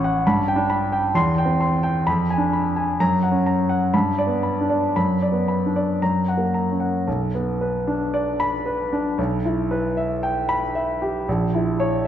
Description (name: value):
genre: classical, romantic character piece for solo piano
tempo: 56-69 BPM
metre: 2/4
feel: rubato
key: B minor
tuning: A4 = 437 Hz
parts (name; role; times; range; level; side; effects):
- warm grand piano; solo; 0.0-12.1 s; A1 to C#6; -19 LUFS; equal; none
room: moderate concert hall reverb, RT60 2.3 s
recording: dark, warm production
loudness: -19 LUFS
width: side -10 dB against mid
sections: 0.0-7.1 A section; 7.1-12.1 B section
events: none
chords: 0.2 G; 1.1 C/E; 2.1 Fdim7; 3.0 F#; 3.9 G; 5.0 Bm/F#; 6.0 F#; 7.1 Bm; 9.2 Em/B; 11.3 F#7/A# (rootless)